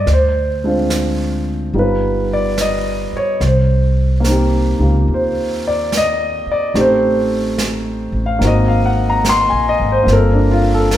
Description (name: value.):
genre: jazz ballad.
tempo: 72 BPM.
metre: 4/4.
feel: swing 67% on 8ths.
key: G minor.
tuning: A4 = 440 Hz.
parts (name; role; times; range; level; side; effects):
warm concert grand piano; accompaniment; 0.0-11.0 s; G3 to C6; -16 LUFS; equal; none.
upright bass; bass; 0.0-11.0 s; G1 to Eb2; -17 LUFS; equal; none.
jazz brush drum kit; drums; 0.1-11.0 s; brushed snare drum, hi-hat, snare drum; -26 LUFS; right 2 dB; none.
room: moderate recital hall reverb, RT60 1.6 s.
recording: recorded in a church or concert hall.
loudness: -13 LUFS.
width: side -12 dB against mid.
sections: 0.0-11.0 A section.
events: none.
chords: 0.1 Dm7b5; 1.7 Gaug7; 3.4 Cm7; 6.7 Am7b5; 8.4 Ab9; 10.1 Gm11.